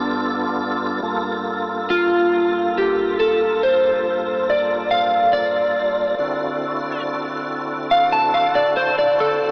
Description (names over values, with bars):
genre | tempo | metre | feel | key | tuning
blues | 47 BPM (dotted quarters) | 12/8 | straight | unclear | A4 = 440 Hz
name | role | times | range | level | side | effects
electric slide guitar | melody | 0.0-9.5 s | D4 to A5 | -17 LUFS | equal | lush chorus
tonewheel organ | sustained chords | 0.0-9.5 s | G2 to A4 | -23 LUFS | equal | overdrive, chorus vibrato, slow rotary speaker
room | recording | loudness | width
wet huge ambient reverb, RT60 7.5 s | dreamy mix soaked in reverb, small speaker sound | -16 LUFS | side -30 dB against mid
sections
0.0-9.5 A section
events
electric slide guitar solo 0.0-9.5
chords
0.0 G9; 1.0 Gm7; 6.2 D9